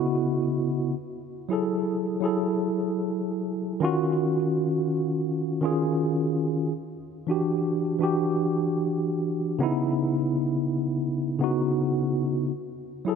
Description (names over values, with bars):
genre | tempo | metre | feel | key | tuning
R&B | 83 BPM | 4/4 | swing 58% on 16ths | unclear | A4 = 440 Hz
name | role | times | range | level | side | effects
mellow tine electric piano | solo | 0.0-13.2 s | C#3 to D#5 | -24 LUFS | equal | medium stereo tremolo
room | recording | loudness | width
moderate lush hall reverb, RT60 2.7 s | none | -24 LUFS | side -6 dB against mid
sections
0.0-13.2 A section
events
none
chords
0.0 C#m9; 0.9 F#m9; 3.8 D#m9; 6.7 Em9; 9.6 C#m9; 12.5 F#m9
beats
0.21 | 0.93 1.66 2.38 3.10 | 3.82 4.55 5.27 5.99 | 6.71 7.44 8.16 8.88 | 9.61 10.33 11.05 11.78 | 12.50